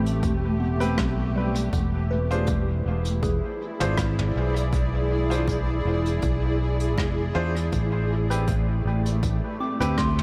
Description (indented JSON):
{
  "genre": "ambient dub",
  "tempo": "80 BPM",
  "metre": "4/4",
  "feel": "swing 54% on 16ths",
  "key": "A minor",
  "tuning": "A4 = 440 Hz",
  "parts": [
    { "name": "granular cloud pad", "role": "sustained chords", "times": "0.0-10.2 s", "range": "A3 to D5", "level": "-31 LUFS", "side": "equal", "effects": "built-in reverb" },
    { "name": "soft synth bell", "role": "arpeggios", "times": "0.0-10.2 s", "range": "G3 to D6", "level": "-35 LUFS", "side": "equal", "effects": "chorus, phaser, diffuse ambient delay" },
    { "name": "fingered electric bass", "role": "bass", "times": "0.0-10.2 s", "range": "E1 to E2", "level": "-27 LUFS", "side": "equal", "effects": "none" },
    { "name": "vintage brush drum kit", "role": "drums", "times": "0.1-10.2 s", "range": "hi-hat, rim click, toms", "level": "-38 LUFS", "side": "equal", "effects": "dub echo" },
    { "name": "electronic kick drum", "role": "drums", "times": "0.2-10.1 s", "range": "none", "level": "-31 LUFS", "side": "equal", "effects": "overdrive" },
    { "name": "bright upright piano", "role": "stabs", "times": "0.8-9.9 s", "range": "C4 to C5", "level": "-35 LUFS", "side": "equal", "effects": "dub echo" }
  ],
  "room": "moderate huge ambient reverb, RT60 7.8 s",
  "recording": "dreamy mix soaked in reverb",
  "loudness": "-25 LUFS",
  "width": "mono",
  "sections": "0.0-10.2 A section",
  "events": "none",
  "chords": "0.0 Am9; 1.7 E7b9; 7.7 Am7",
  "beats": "0.23 0.98 | 1.73 2.48 3.23 3.98 | 4.73 5.48 6.23 6.98 | 7.73 8.48 9.23 9.98"
}